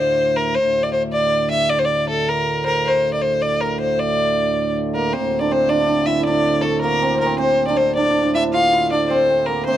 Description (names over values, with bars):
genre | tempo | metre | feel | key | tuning
medieval dance | 106 BPM (dotted quarters) | 6/8 | straight | unclear | A4 = 444 Hz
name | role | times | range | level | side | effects
warm fiddle | melody | 0.0-9.8 s | A4 to F5 | -18 LUFS | equal | none
pedal harmonium | drone | 0.0-9.8 s | D2 to A2 | -25 LUFS | equal | stereo widening
hammered dulcimer | second line | 5.0-9.8 s | A3 to F4 | -20 LUFS | right 3 dB | none
room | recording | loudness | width
light reverb, small room ambience | dry, close 1970s-style studio recording | -16 LUFS | side -12 dB against mid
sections
0.0-5.1 A section; 5.1-9.8 A section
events
none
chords
none